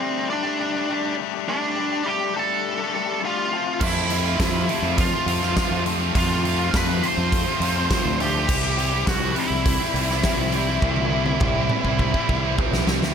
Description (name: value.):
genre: quiet-loud alternative rock.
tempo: 103 BPM.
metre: 4/4.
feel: straight.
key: unclear.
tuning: A4 = 441 Hz.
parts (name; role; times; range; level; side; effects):
octave-fuzz lead guitar; melody; 0.0-12.6 s; C4 to C6; -25 LUFS; right 2 dB; distortion, analog delay.
distorted electric guitar; riff; 0.0-13.1 s; C3 to G4; -27 LUFS; left 14 dB; overdrive.
tight distorted guitar; riff; 3.8-13.1 s; F2 to F4; -27 LUFS; right 19 dB; distortion.
growling fingered electric bass; bass; 3.8-13.1 s; B1 to F2; -26 LUFS; right 1 dB; overdrive.
huge arena drum kit; drums; 3.8-13.1 s; crash cymbal, hi-hat, kick drum, snare drum, toms; -24 LUFS; right 1 dB; none.
room: light reverb.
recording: none.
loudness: -20 LUFS.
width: side -7 dB against mid.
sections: 0.0-13.1 A section.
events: drum fill 10.8-13.1.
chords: 0.0 Gsus2; 3.5 F; 8.5 C.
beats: 0.30 0.89 | 1.47 2.05 2.63 3.22 | 3.80 4.39 4.97 5.56 | 6.14 6.73 7.31 7.90 | 8.48 9.07 9.65 10.24 | 10.82 11.41 11.99 12.58.